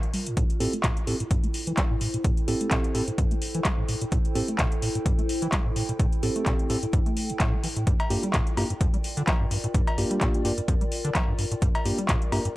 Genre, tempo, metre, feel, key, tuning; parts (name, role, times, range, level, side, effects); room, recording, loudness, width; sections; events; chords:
acid house; 128 BPM; 4/4; swing 55% on 16ths; A phrygian; A4 = 440 Hz
deep acid bass; riff; 0.0-12.5 s; F2 to C4; -30 LUFS; equal; overdrive, wide subtle chorus, vintage 12-bit sampler grit
electro analog drum machine; drums; 0.0-12.5 s; cowbell, handclaps, hi-hat; -31 LUFS; left 1 dB
warbly tape-like pad; texture; 0.0-12.6 s; E4 to G5; -34 LUFS; equal; chorus, built-in reverb, sidechain pumping
electronic kick drum; drums; 0.4-12.2 s; -25 LUFS; equal
tine electric piano; stabs; 0.6-12.4 s; Bb3 to A4; -30 LUFS; right 1 dB; medium tremolo, analog delay
little or no reverb; dry, gritty hardware recording; -23 LUFS; side -18 dB against mid
0.0-12.6 A section
0.4 Am7; 7.9 Gm7